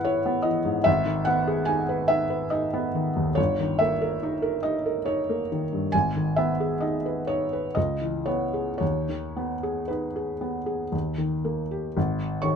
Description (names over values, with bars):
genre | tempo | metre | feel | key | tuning
classical, romantic nocturne for solo piano | 54-74 BPM | 3/4 | rubato | G# minor | A4 = 440 Hz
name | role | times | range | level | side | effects
felt-muted upright piano | solo | 0.0-12.6 s | G1 to C#6 | -23 LUFS | equal | none
room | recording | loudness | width
light reverb | none | -23 LUFS | side -6 dB against mid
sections
0.0-12.0 A section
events
none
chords
0.0 E/G#; 0.9 G#m; 3.4 D#/G; 5.9 G#m; 7.8 C#m7; 8.8 G#m/D#; 10.9 D#; 12.0 G#5